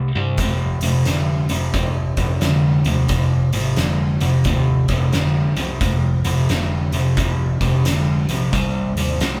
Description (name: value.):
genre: blues rock power trio and southern rock.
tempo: 88 BPM.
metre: 4/4.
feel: swing 64% on 8ths.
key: unclear.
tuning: A4 = 438 Hz.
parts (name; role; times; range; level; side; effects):
sludgy distorted guitar; riff; 0.0-9.4 s; F2 to A3; -21 LUFS; equal; overdrive.
vintage muted picked electric bass; bass; 0.0-9.4 s; F1 to G2; -26 LUFS; equal; none.
oversized low-tuned drum kit; drums; 0.4-9.4 s; hi-hat, kick drum, snare drum; -27 LUFS; equal; none.
room: wet studio reverb, RT60 0.5 s.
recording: band playing live in one room.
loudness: -19 LUFS.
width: mono.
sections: 0.0-9.4 A section.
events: none.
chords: 0.4 F5; 8.5 Cm.